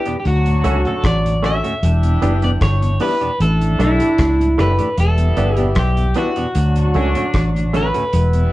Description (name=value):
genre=roots reggae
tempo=76 BPM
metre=4/4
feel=straight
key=unclear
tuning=A4 = 437 Hz
part: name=electric guitar at the edge of break-up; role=melody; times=0.0-8.5 s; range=D4 to E5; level=-21 LUFS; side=equal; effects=none
part: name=clear grand piano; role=stabs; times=0.0-7.9 s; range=D4 to C#5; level=-26 LUFS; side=left 3 dB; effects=none
part: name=mellow tonewheel organ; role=accompaniment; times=0.1-8.4 s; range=D2 to D4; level=-27 LUFS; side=left 1 dB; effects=slow rotary speaker
part: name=semi-hollow electric guitar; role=accompaniment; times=0.1-8.0 s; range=A3 to G4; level=-24 LUFS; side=right 4 dB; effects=none
part: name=damped 70s drum kit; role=drums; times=0.1-8.5 s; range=hi-hat, kick drum, rim click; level=-24 LUFS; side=equal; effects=vintage 12-bit sampler grit
part: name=clear horn section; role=second line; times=0.2-8.5 s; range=F#3 to A4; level=-24 LUFS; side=right 1 dB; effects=none
part: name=vintage muted fingered electric bass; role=bass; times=0.3-8.5 s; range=E1 to D2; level=-16 LUFS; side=equal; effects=none
room=moderate studio reverb, RT60 0.6 s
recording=band playing live in one room, cassette tape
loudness=-14 LUFS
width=side -17 dB against mid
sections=0.0-8.5 A section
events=none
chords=0.2 Dmaj7; 1.8 Em7; 3.4 A7sus4; 5.0 Em7; 6.6 Dmaj7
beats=0.25 1.04 | 1.82 2.61 3.40 4.19 | 4.98 5.76 6.55 7.34 | 8.13